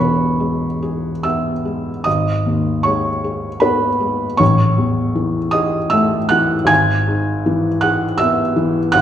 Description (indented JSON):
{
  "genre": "classical, romantic nocturne for solo piano",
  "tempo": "79 BPM",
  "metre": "3/4",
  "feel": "uneven beats, rubato",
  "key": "E major",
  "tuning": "A4 = 438 Hz",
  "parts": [
    { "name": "felt-muted upright piano", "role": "solo", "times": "0.0-9.0 s", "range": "E1 to G#6", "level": "-14 LUFS", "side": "equal", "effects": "none" }
  ],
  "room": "wet recital hall reverb, RT60 1.4 s",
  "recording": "heard from further back in the room",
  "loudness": "-15 LUFS",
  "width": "side -10 dB against mid",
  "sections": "0.0-9.0 A section",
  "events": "none",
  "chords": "0.0 E; 2.1 G#m; 4.4 Amaj7; 6.7 E/G#"
}